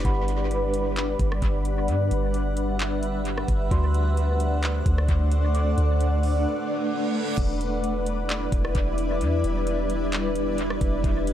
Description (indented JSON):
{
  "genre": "hip hop, atmospheric cloud-rap",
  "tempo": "131 BPM",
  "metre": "4/4",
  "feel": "half-time",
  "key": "E minor",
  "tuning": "A4 = 440 Hz",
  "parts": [
    { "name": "granular cloud pad", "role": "sustained chords", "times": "0.0-11.3 s", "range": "G3 to F#5", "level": "-26 LUFS", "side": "equal", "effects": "built-in reverb, sidechain pumping" },
    { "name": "soft 808-style bass", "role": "bass", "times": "0.0-11.3 s", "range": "E1 to G2", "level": "-25 LUFS", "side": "equal", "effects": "none" },
    { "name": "smooth R&B drum kit", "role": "drums", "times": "0.0-11.3 s", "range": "crash cymbal, handclaps, hi-hat, kick drum, rim click", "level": "-28 LUFS", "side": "equal", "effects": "dub echo" },
    { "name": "large celesta", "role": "texture", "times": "0.0-7.4 s", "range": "F#4 to D6", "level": "-38 LUFS", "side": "right 2 dB", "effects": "none" },
    { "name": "reverse cymbal and impact", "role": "sound effects", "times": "6.6-9.2 s", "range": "none", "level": "-39 LUFS", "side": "right 2 dB", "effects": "none" }
  ],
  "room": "digital ambience",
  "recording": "echo-heavy mix",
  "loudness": "-22 LUFS",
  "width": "side -11 dB against mid",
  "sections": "0.0-7.4 A section; 7.4-11.3 B section",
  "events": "break 6.5-7.4; reverse cymbal 6.6-7.4; impact 7.4-9.2",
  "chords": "0.0 Gmaj7; 3.7 D7; 7.4 Em7"
}